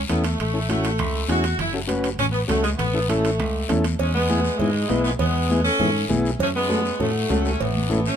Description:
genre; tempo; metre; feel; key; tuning
latin, cumbia; 200 BPM; 4/4; straight; A major; A4 = 440 Hz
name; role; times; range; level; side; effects
fingered electric bass; bass; 0.0-8.1 s; F#1 to A2; -24 LUFS; equal; none
clear saxophone section; melody; 0.1-8.2 s; E3 to A4; -24 LUFS; equal; none
overdriven combo organ; accompaniment; 0.1-8.0 s; B3 to B4; -26 LUFS; left 3 dB; none
congas; percussion; 0.1-8.1 s; none; -29 LUFS; right 2 dB; none
guiro; percussion; 0.1-8.2 s; none; -34 LUFS; left 7 dB; none
timbales and cowbell; percussion; 0.1-7.8 s; none; -32 LUFS; right 8 dB; none
room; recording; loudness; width
light reverb; minimal, uncompressed stereo recording; -19 LUFS; side -8 dB against mid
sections
0.0-4.0 A section; 4.0-8.2 B section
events
none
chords
0.0 A; 1.6 F#m; 2.8 A; 4.0 E6; 6.4 F#m; 7.6 Aadd9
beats
0.09 | 0.39 0.69 0.99 1.29 | 1.59 1.89 2.19 2.50 | 2.79 3.10 3.40 3.70 | 4.00 4.30 4.60 4.90 | 5.20 5.50 5.80 6.10 | 6.40 6.70 7.00 7.30 | 7.60 7.90

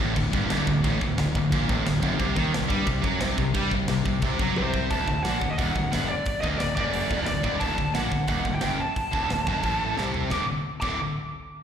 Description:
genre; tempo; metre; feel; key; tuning
heavy metal; 177 BPM; 4/4; straight; D phrygian dominant; A4 = 439 Hz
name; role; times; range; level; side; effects
scooped high-gain guitar; riff; 0.0-11.0 s; D2 to G3; -30 LUFS; left 8 dB; distortion, slapback echo
scooped high-gain guitar; riff; 0.0-11.0 s; D2 to G3; -29 LUFS; right 8 dB; distortion, slapback echo
thick fuzz guitar; riff; 0.0-4.9 s; D2 to G3; -33 LUFS; equal; none
fuzz fingered electric bass; bass; 0.0-11.0 s; D1 to G2; -29 LUFS; equal; overdrive
tight metal drum kit; drums; 0.0-10.9 s; china cymbal, crash cymbal, hi-hat, kick drum, snare drum, toms; -30 LUFS; equal; none
high-gain lead guitar; melody; 4.6-11.0 s; C5 to D6; -29 LUFS; equal; distortion, slapback echo, tape echo
room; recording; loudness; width
studio reverb; live gig heard through the venue's PA, recital hall reverb; -23 LUFS; side -8 dB against mid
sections
0.0-4.9 A section; 4.9-10.3 B section; 10.3-11.6 C section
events
drum fill 4.6-4.9, 10.0-10.3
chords
0.0 D; 2.2 C5; 4.9 D; 10.3 D5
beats
0.17 0.51 | 0.85 1.19 1.52 1.86 | 2.20 2.53 2.87 3.21 | 3.55 3.88 4.22 4.56 | 4.90 5.24 5.58 5.91 | 6.25 6.59 6.93 7.27 | 7.61 7.95 8.29 8.63 | 8.97 9.30 9.64 9.98 | 10.32 10.66

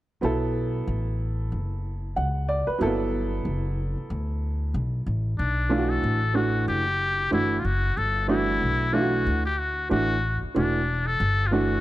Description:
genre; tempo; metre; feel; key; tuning
hip hop; 93 BPM; 4/4; swing 59% on 16ths; unclear; A4 = 439 Hz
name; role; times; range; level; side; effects
warm upright piano; accompaniment; 0.2-11.8 s; E3 to F#5; -26 LUFS; right 2 dB; none
upright bass; bass; 0.2-11.8 s; E1 to D2; -27 LUFS; equal; none
trumpet with metal mute; melody; 5.4-11.8 s; D4 to A4; -26 LUFS; left 2 dB; none
room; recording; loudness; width
light reverb; none; -23 LUFS; side -15 dB against mid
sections
0.2-5.4 A section; 5.4-11.8 B section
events
none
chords
0.2 Bsus2; 2.8 Gmaj9; 5.4 Bm7; 8.0 Gmaj9; 10.5 Em9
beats
| 0.23 0.87 1.52 2.16 | 2.81 3.45 4.10 4.74 | 5.39 6.03 6.68 7.32 | 7.97 8.61 9.26 9.90 | 10.55 11.19

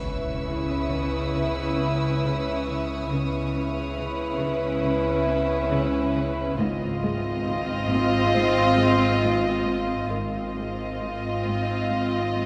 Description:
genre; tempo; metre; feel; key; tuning
cinematic; 69 BPM; 4/4; straight; C# dorian; A4 = 440 Hz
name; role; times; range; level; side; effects
warm chamber violin section; melody; 0.0-12.5 s; B4 to D#5; -33 LUFS; equal; none
warm symphonic violin section; second line; 0.0-12.5 s; E4 to E#4; -31 LUFS; equal; none
dark symphonic viola section; accompaniment; 0.0-12.5 s; B#3 to C#4; -33 LUFS; equal; none
mellow French horn section; sustained chords; 0.0-12.5 s; B3 to E#4; -34 LUFS; equal; none
rich symphonic double bass section; bass; 0.0-12.5 s; G#1 to C#2; -33 LUFS; equal; none
warm symphonic cello section; bass; 0.0-12.5 s; G#2 to C#3; -35 LUFS; equal; none
sub drop; sound effects; 0.0-3.1 s; none; -44 LUFS; equal; none
dark studio violin section; texture; 0.0-6.1 s; C#6 to E6; -41 LUFS; equal; none
warm symphonic cello section; riff; 0.1-12.5 s; G#2 to C#4; -36 LUFS; equal; none
celesta; texture; 0.5-12.5 s; E4 to E5; -41 LUFS; equal; none
room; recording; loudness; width
wet cathedral reverb, RT60 5.3 s; recorded in a church or concert hall; -25 LUFS; mono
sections
0.0-12.5 A section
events
impact 0.0-3.1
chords
0.0 C#m7; 6.6 G#6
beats
0.50 1.37 2.24 | 3.12 3.99 4.86 5.73 | 6.61 7.47 8.35 9.23 | 10.12 11.02 11.93

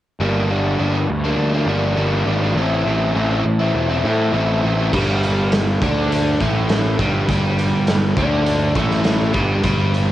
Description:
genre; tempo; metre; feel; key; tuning
indie rock; 102 BPM; 4/4; straight; G dorian; A4 = 440 Hz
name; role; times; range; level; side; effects
biting overdriven guitar; riff; 0.2-10.1 s; G2 to E4; -19 LUFS; equal; cassette tape
fuzz picked electric bass; bass; 0.2-10.1 s; E1 to A2; -19 LUFS; equal; overdrive
raw garage drum kit; drums; 4.9-10.1 s; crash cymbal, hi-hat, kick drum, snare drum; -21 LUFS; equal; none
room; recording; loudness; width
light reverb; home recording on cassette; -16 LUFS; side -13 dB against mid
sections
0.2-4.9 A section; 4.9-10.1 B section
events
none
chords
0.2 Gm; 2.6 Am; 4.9 G5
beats
| 0.20 0.79 1.38 1.97 | 2.56 3.15 3.74 4.33 | 4.92 5.51 6.10 6.69 | 7.28 7.87 8.46 9.05 | 9.64

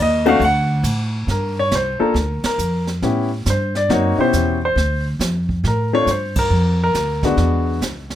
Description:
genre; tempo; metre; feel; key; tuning
jazz piano trio; 138 BPM; 4/4; swing 65% on 8ths; unclear; A4 = 440 Hz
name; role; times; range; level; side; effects
warm concert grand piano; melody; 0.0-7.8 s; B2 to F#5; -18 LUFS; left 2 dB; none
upright bass; bass; 0.0-8.2 s; C2 to A2; -20 LUFS; equal; none
jazz brush drum kit; drums; 0.3-8.2 s; brushed snare drum, hi-hat, kick drum, ride cymbal, snare drum; -26 LUFS; right 2 dB; none
room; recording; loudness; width
light reverb; close, detailed microphones; -16 LUFS; side -11 dB against mid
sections
0.0-1.3 A section; 1.3-8.2 B section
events
grand piano solo 0.0-1.3; band accent 2.4, 6.3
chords
0.4 D; 1.3 Gm7; 3.0 A7; 4.8 Dm7; 6.5 N.C.; 7.4 E9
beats
0.41 0.85 | 1.28 1.72 2.15 2.59 | 3.02 3.46 3.90 4.33 | 4.77 5.21 5.64 6.08 | 6.51 6.95 7.39 7.83

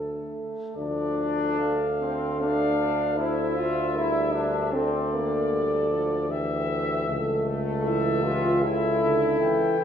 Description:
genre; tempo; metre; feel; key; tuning
classical, hymn-like piece for brass band; 77 BPM; 4/4; rubato; D minor; A4 = 442 Hz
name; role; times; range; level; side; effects
mellow cornet; melody; 0.0-9.8 s; A4 to G5; -32 LUFS; left 5 dB; none
mellow French horn section; second line; 0.0-9.8 s; E4 to C5; -29 LUFS; right 2 dB; none
dark trombone section; accompaniment; 0.0-9.8 s; A3 to F4; -27 LUFS; left 1 dB; none
mellow trombone; accompaniment; 0.0-9.8 s; C#3 to A3; -34 LUFS; right 2 dB; none
warm tuba; bass; 0.0-9.8 s; C#2 to D2; -29 LUFS; equal; none
room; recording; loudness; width
wet recital hall reverb, RT60 1.5 s; recorded in a church or concert hall; -23 LUFS; side -8 dB against mid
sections
0.8-9.8 A section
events
none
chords
0.0 D5; 0.8 Dm; 3.9 Em7b5/D; 7.1 A/C#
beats
| 0.77 1.60 2.39 3.18 | 3.95 4.74 5.53 6.30 | 7.08 7.86 8.63 9.41

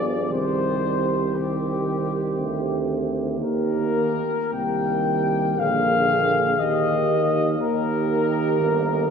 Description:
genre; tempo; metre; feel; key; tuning
classical, hymn-like piece for brass band; 50-61 BPM; 3/4; rubato; unclear; A4 = 440 Hz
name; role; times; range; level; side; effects
mellow trumpet section; melody; 0.0-9.1 s; G4 to G5; -24 LUFS; left 5 dB; none
mellow French horn section; second line; 0.0-9.1 s; G4 to Ab4; -27 LUFS; right 9 dB; none
mellow euphonium; accompaniment; 0.0-9.1 s; Bb3 to C4; -28 LUFS; left 2 dB; none
mellow trombone; accompaniment; 0.0-9.1 s; D3 to F3; -29 LUFS; right 5 dB; none
clear tuba; bass; 0.0-9.1 s; G1 to Eb2; -27 LUFS; right 1 dB; none
room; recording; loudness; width
wet cathedral reverb, RT60 4.8 s; heard from further back in the room; -20 LUFS; side -6 dB against mid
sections
0.0-9.1 A section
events
none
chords
0.3 Cm; 3.4 Eb; 5.6 Bb7; 6.6 Eb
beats
| 0.31 1.36 2.39 | 3.40 4.54 5.59 | 6.59 7.60 8.60

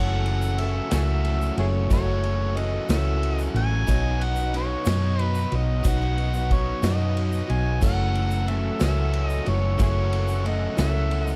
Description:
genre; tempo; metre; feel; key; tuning
folk rock and heartland rock; 61 BPM (dotted quarters); 6/8; straight; unclear; A4 = 440 Hz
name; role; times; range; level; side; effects
overdriven harmonica; melody; 0.0-11.3 s; E4 to G#5; -33 LUFS; equal; none
dark upright piano; accompaniment; 0.0-11.4 s; D#4 to E5; -42 LUFS; equal; none
picked acoustic archtop guitar; accompaniment; 0.0-11.4 s; F#2 to F#4; -35 LUFS; equal; none
musette accordion; sustained chords; 0.0-11.4 s; A4 to F#6; -43 LUFS; equal; none
biting overdriven guitar; riff; 0.0-11.4 s; F#2 to F#4; -34 LUFS; equal; none
hollow-body short-scale fingered electric bass; bass; 0.0-11.4 s; F#1 to F#2; -26 LUFS; equal; none
unplugged drum kit; drums; 0.3-11.3 s; crash cymbal, kick drum, ride cymbal, snare drum; -31 LUFS; equal; none
tube shaker; percussion; 0.4-11.4 s; none; -48 LUFS; equal; none
room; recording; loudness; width
little or no reverb; dark, warm production; -24 LUFS; mono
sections
0.0-11.4 A section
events
none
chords
0.0 F#m7; 3.9 Badd9; 7.8 F#m7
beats
0.92 | 1.90 2.89 | 3.88 4.87 | 5.85 6.84 | 7.83 8.81 | 9.80 10.79

